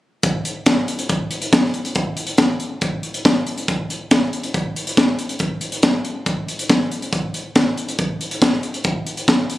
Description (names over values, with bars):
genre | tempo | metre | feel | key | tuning
rock | 139 BPM | 4/4 | straight | none | none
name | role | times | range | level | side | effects
crisp fusion drum kit | drums | 0.2-9.6 s | hi-hat, kick drum, snare drum | -17 LUFS | equal | none
room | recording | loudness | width
moderate recital hall reverb, RT60 1.7 s | recorded on a phone in the room, club reverb | -17 LUFS | side -16 dB against mid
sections
0.2-9.6 A section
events
none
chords
none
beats
| 0.23 0.66 1.09 1.52 | 1.95 2.38 2.82 3.25 | 3.68 4.11 4.54 4.97 | 5.40 5.83 6.26 6.70 | 7.13 7.56 7.99 8.42 | 8.85 9.28